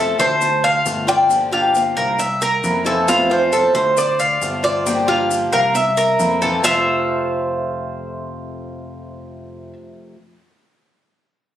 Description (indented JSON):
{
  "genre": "latin, Cuban son and guajira",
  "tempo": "135 BPM",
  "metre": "4/4",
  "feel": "straight",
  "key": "F major",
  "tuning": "A4 = 440 Hz",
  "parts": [
    { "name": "Cuban tres", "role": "melody", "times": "0.0-9.7 s", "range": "C5 to A5", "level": "-19 LUFS", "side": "left 1 dB", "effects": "tape echo" },
    { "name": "picked swing-style acoustic guitar", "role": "accompaniment", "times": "0.0-10.2 s", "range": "F2 to G4", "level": "-25 LUFS", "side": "left 3 dB", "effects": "none" },
    { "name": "Cuban tres", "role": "arpeggios", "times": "0.0-9.7 s", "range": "F4 to F5", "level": "-18 LUFS", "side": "right 1 dB", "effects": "none" },
    { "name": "picked electric bass", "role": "bass", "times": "0.0-9.7 s", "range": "F1 to F2", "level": "-28 LUFS", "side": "equal", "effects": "none" },
    { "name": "maracas", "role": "percussion", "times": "0.2-6.7 s", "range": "none", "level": "-29 LUFS", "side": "left 4 dB", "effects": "none" }
  ],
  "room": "moderate studio reverb, RT60 0.6 s",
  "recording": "recorded on a phone in the room, club reverb, compression",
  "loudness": "-15 LUFS",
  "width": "side -11 dB against mid",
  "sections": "0.0-6.6 A section; 6.6-10.2 B section",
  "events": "none",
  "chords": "0.4 Dm7; 1.3 Gm7; 2.2 C7; 3.1 Fmaj7; 4.0 Dm7; 4.9 Gm7; 5.8 C7; 6.6 Fmaj7"
}